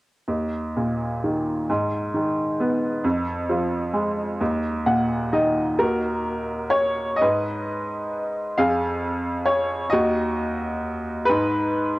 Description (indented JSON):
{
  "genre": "classical, lyrical solo piano",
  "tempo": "44 BPM (dotted quarters)",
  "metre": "6/8",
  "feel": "rubato",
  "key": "Eb minor",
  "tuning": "A4 = 439 Hz",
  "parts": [
    { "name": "bright upright piano", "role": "solo", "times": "0.3-12.0 s", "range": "Eb2 to Gb5", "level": "-21 LUFS", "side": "equal", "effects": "cassette tape" }
  ],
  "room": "moderate spring reverb, RT60 1.9 s, small room ambience",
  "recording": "home recording on cassette",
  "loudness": "-21 LUFS",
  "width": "side -19 dB against mid",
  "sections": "0.3-5.8 A section; 5.8-12.0 B section",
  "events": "upright piano fill 4.4-5.8",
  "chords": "0.3 Eb5; 1.7 Abm; 3.0 Fm; 4.4 Eb5; 5.8 Ebm; 7.2 Abm; 8.6 Fm; 9.9 Ebm; 11.3 Abm",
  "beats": "| 0.28 1.69 | 3.05 4.40 | 5.81 7.22 | 8.58 9.94 | 11.29"
}